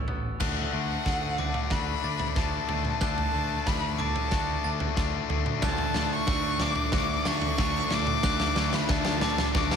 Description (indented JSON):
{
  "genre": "post-rock",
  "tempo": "92 BPM",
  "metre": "4/4",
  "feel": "straight",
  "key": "D major",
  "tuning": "A4 = 440 Hz",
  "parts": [
    { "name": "glockenspiel with brass mallets", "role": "arpeggios", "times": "0.0-9.8 s", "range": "D6 to A6", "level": "-40 LUFS", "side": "right 6 dB", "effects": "digital delay" },
    { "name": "twangy electric guitar", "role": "arpeggios", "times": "0.0-9.8 s", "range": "D3 to F#4", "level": "-39 LUFS", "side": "left 5 dB", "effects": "none" },
    { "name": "growling fingered electric bass", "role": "bass", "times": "0.0-9.8 s", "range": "A1 to D2", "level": "-33 LUFS", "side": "equal", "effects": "overdrive" },
    { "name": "big rock drum kit", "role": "drums", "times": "0.1-9.8 s", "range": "crash cymbal, kick drum, snare drum, toms", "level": "-29 LUFS", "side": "right 1 dB", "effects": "none" },
    { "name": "dark violin", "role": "melody", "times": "0.4-9.8 s", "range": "F#5 to D6", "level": "-31 LUFS", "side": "left 1 dB", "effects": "digital delay" },
    { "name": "distorted electric guitar", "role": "riff", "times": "0.4-9.8 s", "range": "D3 to D4", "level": "-32 LUFS", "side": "left 14 dB", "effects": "overdrive" },
    { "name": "sludgy distorted guitar", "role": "riff", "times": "5.6-9.8 s", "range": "D3 to D4", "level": "-33 LUFS", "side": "right 13 dB", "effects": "overdrive" }
  ],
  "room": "light reverb, studio reverb",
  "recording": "none",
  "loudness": "-25 LUFS",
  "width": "side -7 dB against mid",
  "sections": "0.4-9.8 A section",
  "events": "build-up 0.4-9.8; drum fill 0.4-9.8",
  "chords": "0.4 D"
}